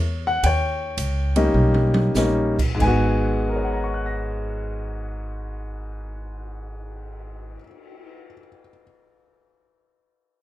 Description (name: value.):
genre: jazz piano trio.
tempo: 89-118 BPM.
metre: 4/4.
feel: swing 68% on 8ths.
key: G# minor.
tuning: A4 = 440 Hz.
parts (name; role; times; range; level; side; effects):
clear baby grand piano; melody; 0.0-8.8 s; G#2 to A#6; -23 LUFS; left 2 dB; none.
upright bass; bass; 0.0-7.5 s; G#1 to E2; -24 LUFS; equal; none.
open jazz drum kit; drums; 0.4-8.1 s; crash cymbal, cymbal swell, hi-hat, kick drum, ride cymbal, snare drum, toms; -28 LUFS; right 2 dB; none.
room: light reverb.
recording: none.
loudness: -19 LUFS.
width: side -15 dB against mid.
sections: 0.0-2.8 A section; 2.8-8.2 B section.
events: slowing down 0.0-2.8; drum fill 1.5-2.1.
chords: 0.4 D#7; 2.8 G#m7.